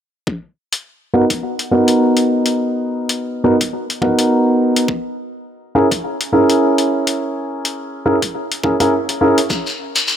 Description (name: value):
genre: glitch hop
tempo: 104 BPM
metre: 4/4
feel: swing 57% on 16ths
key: unclear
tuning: A4 = 440 Hz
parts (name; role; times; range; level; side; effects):
- electronic kick drum; drums; 0.3-9.6 s; none; -23 LUFS; left 1 dB; overdrive, high-pass filter on kick
- electronic hi-hat; drums; 0.7-10.1 s; none; -20 LUFS; left 3 dB; none
- warm baby grand piano; stabs; 1.1-9.4 s; B3 to A#4; -15 LUFS; equal; sidechain pumping, low-pass filter, digital delay
- shekere; percussion; 9.5-10.2 s; none; -18 LUFS; left 3 dB; none
room: moderate lush hall reverb, RT60 2.5 s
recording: none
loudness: -14 LUFS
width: side -9 dB against mid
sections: 0.3-10.2 A section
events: none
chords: 0.3 Bmaj7; 4.9 C#m6; 9.5 N.C.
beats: | 0.27 0.85 1.42 2.00 | 2.58 3.15 3.73 4.31 | 4.89 5.46 6.04 6.62 | 7.19 7.77 8.35 8.92 | 9.50 10.08